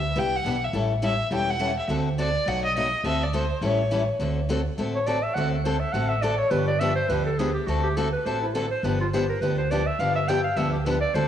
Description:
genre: acoustic string swing (jazz manouche).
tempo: 207 BPM.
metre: 4/4.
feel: swing 57% on 8ths.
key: D mixolydian.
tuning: A4 = 441 Hz.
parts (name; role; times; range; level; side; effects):
warm violin; melody; 0.0-4.1 s; C5 to G5; -26 LUFS; equal; cassette tape, tape echo.
upright bass; bass; 0.0-11.3 s; E1 to D2; -27 LUFS; right 1 dB; none.
picked steel-string acoustic guitar; accompaniment; 0.2-11.3 s; B2 to A4; -27 LUFS; left 4 dB; cassette tape.
breathy clarinet; second line; 5.0-11.3 s; E4 to G5; -26 LUFS; right 2 dB; cassette tape.
room: moderate lush hall reverb, RT60 2.4 s.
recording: home recording on cassette.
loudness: -22 LUFS.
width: side -10 dB against mid.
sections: 0.0-4.2 A section; 4.2-11.3 B section.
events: clarinet solo 4.2-11.3.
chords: 0.0 Em7; 0.7 A7; 1.9 D7; 2.5 B7; 3.0 D7; 3.6 A7; 4.2 D7; 6.5 G7; 7.7 D7; 8.8 G7.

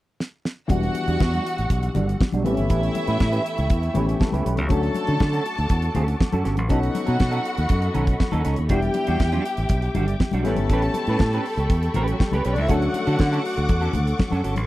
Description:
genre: disco.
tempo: 120 BPM.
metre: 4/4.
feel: straight.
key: E dorian.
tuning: A4 = 440 Hz.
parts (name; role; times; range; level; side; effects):
damped 70s drum kit; drums; 0.2-14.7 s; hi-hat, kick drum, snare drum; -22 LUFS; equal; none.
rich studio string section; second line; 0.7-14.4 s; F#3 to A5; -29 LUFS; equal; none.
semi-hollow electric guitar; accompaniment; 0.7-14.6 s; G3 to B4; -28 LUFS; right 4 dB; ensemble chorus, low-pass filter.
warm grand piano; accompaniment; 0.7-14.7 s; E3 to A5; -29 LUFS; left 5 dB; low-pass filter.
rich studio string section; sustained chords; 0.7-14.7 s; G3 to E6; -33 LUFS; left 1 dB; low-pass filter.
modern bright fingered electric bass; bass; 0.7-14.7 s; E1 to D3; -23 LUFS; equal; none.
congas; percussion; 0.7-14.7 s; none; -31 LUFS; left 4 dB; none.
room: little or no reverb.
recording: dry, close 1970s-style studio recording.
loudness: -20 LUFS.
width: side -16 dB against mid.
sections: 0.7-14.7 A section.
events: drum fill 0.2-0.7; filter sweep 0.7-14.7; grand piano fill 4.0-4.7.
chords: 0.0 N.C.; 0.7 Em9; 2.5 A9; 4.7 Dmaj7; 6.7 B9; 8.7 Em9; 10.4 A9; 12.7 Dmaj7.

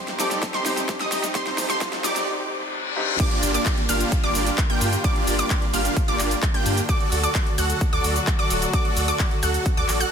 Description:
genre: EDM, festival progressive house.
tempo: 130 BPM.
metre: 4/4.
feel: straight.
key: G minor.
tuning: A4 = 440 Hz.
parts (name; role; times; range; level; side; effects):
clear grand piano; accompaniment; 0.0-3.2 s; G2 to A4; -32 LUFS; equal; sidechain pumping, tape echo.
dark chamber string section; sustained chords; 0.0-10.1 s; C3 to A4; -32 LUFS; left 2 dB; sidechain pumping.
wide unison pluck; arpeggios; 0.0-10.1 s; C6 to G6; -28 LUFS; equal; sidechain pumping, tape echo.
supersaw chords; riff; 0.0-10.1 s; Bb3 to G5; -26 LUFS; right 1 dB; sidechain pumping, tape echo.
riser, reverse cymbal and downlifter; sound effects; 0.6-6.9 s; none; -31 LUFS; left 4 dB; none.
big-room dance drum kit; drums; 0.1-10.1 s; cabasa, crash cymbal, handclaps, hi-hat, snare drum; -28 LUFS; equal; overdrive, studio reverb.
electronic kick drum; drums; 0.4-9.8 s; none; -23 LUFS; equal; overdrive, studio reverb.
saturated sub bass; bass; 3.4-10.0 s; D1 to G2; -26 LUFS; equal; sidechain pumping.
room: light reverb, digital ambience.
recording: dense, heavily limited modern master, high-pass filter.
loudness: -20 LUFS.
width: side -7 dB against mid.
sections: 0.0-3.2 A section; 3.2-10.1 B section.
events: build-up 0.0-3.2; drum fill 0.0-2.3; reverse cymbal 2.3-3.2; drop 3.2-10.1.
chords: 0.0 Cm; 3.2 Gm7; 6.9 D.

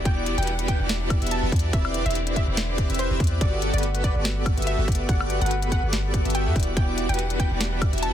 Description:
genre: future bass.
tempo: 143 BPM.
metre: 4/4.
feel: swing 55% on 16ths, half-time.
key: G major.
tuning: A4 = 440 Hz.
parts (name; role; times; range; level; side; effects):
clear studio string section; sustained chords; 0.0-8.1 s; D3 to F#5; -37 LUFS; left 1 dB; sidechain pumping.
airy dreamy lead; arpeggios; 0.0-8.1 s; B4 to E5; -36 LUFS; equal; chorus, sidechain pumping, dub echo.
concert harp; arpeggios; 0.0-8.1 s; E4 to E5; -38 LUFS; left 2 dB; sidechain pumping, dub echo.
soft supersaw; riff; 0.0-8.1 s; B3 to E5; -29 LUFS; equal; sidechain pumping.
warm 808-style bass; bass; 0.0-8.1 s; E1 to G2; -26 LUFS; equal; sidechain pumping.
wide unison pluck; melody; 0.1-8.1 s; C5 to A5; -32 LUFS; right 1 dB; sidechain pumping, dub echo.
electronic kick drum; drums; 0.1-7.9 s; none; -23 LUFS; equal; none.
trap drum kit; drums; 0.1-8.1 s; hi-hat, snare drum, woodblock; -30 LUFS; left 2 dB; none.
room: little or no reverb.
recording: dense, heavily limited modern master.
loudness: -21 LUFS.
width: side -10 dB against mid.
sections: 0.0-8.1 A section.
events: none.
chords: 0.0 Em9; 1.7 Cmaj9/E; 3.4 Gmaj9; 6.6 Em9.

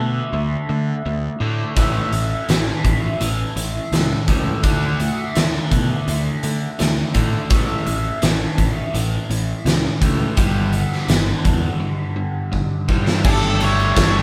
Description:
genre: classic rock.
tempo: 84 BPM.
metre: 4/4.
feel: straight.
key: A mixolydian.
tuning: A4 = 440 Hz.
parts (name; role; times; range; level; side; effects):
cranked stack guitar; riff; 0.0-14.2 s; G2 to A4; -28 LUFS; equal; overdrive, phaser.
overdriven electric guitar; riff; 0.0-14.2 s; G2 to G4; -28 LUFS; equal; none.
fuzz fingered electric bass; bass; 0.0-14.2 s; G1 to D3; -25 LUFS; equal; overdrive.
big rock drum kit; drums; 1.8-14.1 s; crash cymbal, hi-hat, kick drum, ride cymbal, snare drum; -22 LUFS; equal; none.
bright tonewheel organ; sustained chords; 12.9-14.2 s; G3 to F5; -34 LUFS; equal; none.
octave-fuzz lead guitar; melody; 13.2-14.2 s; A4 to C#5; -23 LUFS; equal; distortion.
fuzz guitar; riff; 13.2-14.2 s; G2 to G3; -30 LUFS; equal; none.
warm grand piano; accompaniment; 13.3-14.2 s; D4 to A4; -34 LUFS; equal; none.
tambourine; percussion; 13.3-14.1 s; none; -44 LUFS; equal; none.
room: moderate studio reverb, RT60 0.5 s.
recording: band playing live in one room.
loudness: -19 LUFS.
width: mono.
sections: 0.0-13.3 A section.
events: break 11.8-13.3; drum fill 12.5-13.3.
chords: 0.0 D; 1.8 A; 4.6 D; 7.5 A; 10.4 G; 13.3 Gsus2.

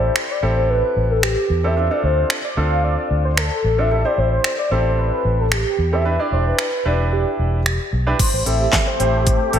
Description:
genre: dance-pop.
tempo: 112 BPM.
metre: 4/4.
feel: straight.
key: A minor.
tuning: A4 = 443 Hz.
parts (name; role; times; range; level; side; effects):
warm velvety synth lead; melody; 0.0-9.6 s; G4 to F5; -21 LUFS; equal; chorus, ping-pong delay.
warm concert grand piano; accompaniment; 0.0-9.6 s; C4 to D5; -25 LUFS; right 2 dB; sidechain pumping.
vintage muted fingered electric bass; bass; 0.0-9.6 s; E1 to E2; -20 LUFS; equal; sidechain pumping.
pop drum kit; drums; 0.2-9.6 s; crash cymbal, finger snaps, handclaps, hi-hat, kick drum, snare drum; -22 LUFS; equal; none.
filtered supersaw swell; sustained chords; 8.2-9.6 s; A3 to G4; -25 LUFS; left 1 dB; ensemble chorus, sidechain pumping.
room: moderate lush hall reverb, RT60 1.9 s, digital ambience.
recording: dreamy mix soaked in reverb.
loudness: -16 LUFS.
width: side -9 dB against mid.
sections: 0.0-8.2 A section; 8.2-9.6 B section.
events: none.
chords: 0.0 Am7; 1.8 Dm7; 3.9 Am7; 6.1 Em7; 8.2 Am7.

